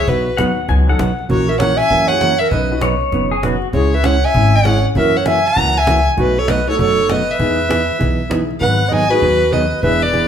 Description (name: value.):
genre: country, western swing.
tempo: 197 BPM.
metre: 4/4.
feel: swing 63% on 8ths.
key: unclear.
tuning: A4 = 440 Hz.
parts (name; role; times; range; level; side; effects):
clear fiddle; melody; 0.0-10.3 s; B4 to A#5; -18 LUFS; left 1 dB; none.
mellow clarinet; second line; 0.0-10.3 s; F#4 to F#5; -18 LUFS; right 1 dB; none.
upright bass; bass; 0.0-10.3 s; E1 to F#2; -19 LUFS; left 1 dB; none.
hollow-body jazz guitar; accompaniment; 0.1-10.3 s; B2 to B4; -20 LUFS; right 4 dB; none.
cajon; drums; 0.1-10.3 s; none; -24 LUFS; left 1 dB; none.
pedal steel guitar; second line; 0.4-3.7 s; F#4 to G#5; -21 LUFS; left 4 dB; none.
clear upright piano; accompaniment; 0.4-10.3 s; F#3 to C#5; -25 LUFS; left 3 dB; none.
room: moderate large studio reverb, RT60 1.1 s.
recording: band playing live in one room.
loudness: -13 LUFS.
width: side -8 dB against mid.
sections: 0.0-8.6 A section; 8.6-10.3 B section.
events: none.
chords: 0.1 B; 1.3 F#7/A#; 2.5 Badd9; 3.7 C#m; 5.0 F#7; 6.2 B7; 7.4 Emaj7; 8.6 G#m7.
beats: | 0.08 0.38 0.69 0.99 | 1.30 1.60 1.91 2.21 | 2.52 2.82 3.13 3.43 | 3.74 4.04 4.35 4.65 | 4.96 5.26 5.57 5.87 | 6.18 6.48 6.79 7.09 | 7.40 7.70 8.01 8.31 | 8.62 8.92 9.23 9.53 | 9.84 10.14.